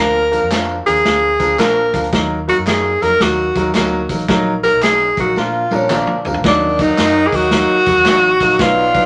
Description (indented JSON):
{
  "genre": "uptempo 1960s-style soul",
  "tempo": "111 BPM",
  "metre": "4/4",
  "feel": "swing 65% on 8ths",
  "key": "Eb harmonic minor",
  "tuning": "A4 = 440 Hz",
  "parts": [
    { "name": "breathy tenor saxophone", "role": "melody", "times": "0.0-9.1 s", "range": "Db4 to Bb4", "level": "-16 LUFS", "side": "equal", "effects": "none" },
    { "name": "clear upright piano", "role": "accompaniment", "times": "0.0-9.1 s", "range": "F3 to Bb4", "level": "-22 LUFS", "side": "equal", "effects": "none" },
    { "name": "vintage muted fingered electric bass", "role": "bass", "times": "0.0-9.0 s", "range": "A1 to Bb2", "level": "-29 LUFS", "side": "equal", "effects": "none" },
    { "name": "vintage drum kit", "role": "drums", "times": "0.3-9.0 s", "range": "hi-hat, kick drum, snare drum, toms", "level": "-22 LUFS", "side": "equal", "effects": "none" },
    { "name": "tambourine and handclaps", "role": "percussion", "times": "0.3-9.0 s", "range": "none", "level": "-30 LUFS", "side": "equal", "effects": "none" },
    { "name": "congas", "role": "percussion", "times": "0.5-6.2 s", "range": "none", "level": "-35 LUFS", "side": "equal", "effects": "none" },
    { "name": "warm saxophone section", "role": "second line", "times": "6.4-9.1 s", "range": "Gb3 to D5", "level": "-26 LUFS", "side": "equal", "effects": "none" }
  ],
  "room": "wet studio reverb, RT60 0.5 s",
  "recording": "none",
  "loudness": "-15 LUFS",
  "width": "mono",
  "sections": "0.0-6.4 A section; 6.4-9.1 B section",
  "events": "tenor saxophone solo 0.0-6.4; drum fill 5.4-6.4",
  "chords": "0.0 Bb/D; 2.1 Ebm; 4.3 Ebm/Bb; 5.4 Bb; 6.4 Ebm"
}